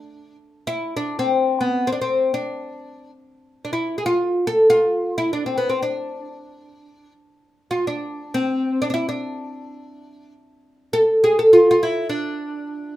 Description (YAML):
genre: turkish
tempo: free time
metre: none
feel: none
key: D makam nikriz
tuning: A4 = 440 Hz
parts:
  - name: oud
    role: solo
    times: 0.0-13.0 s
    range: B3 to A4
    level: -18 LUFS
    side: equal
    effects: none
room: moderate studio reverb, RT60 0.5 s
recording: minimal, uncompressed stereo recording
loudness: -18 LUFS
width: side -14 dB against mid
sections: 0.0-13.0 A section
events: none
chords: none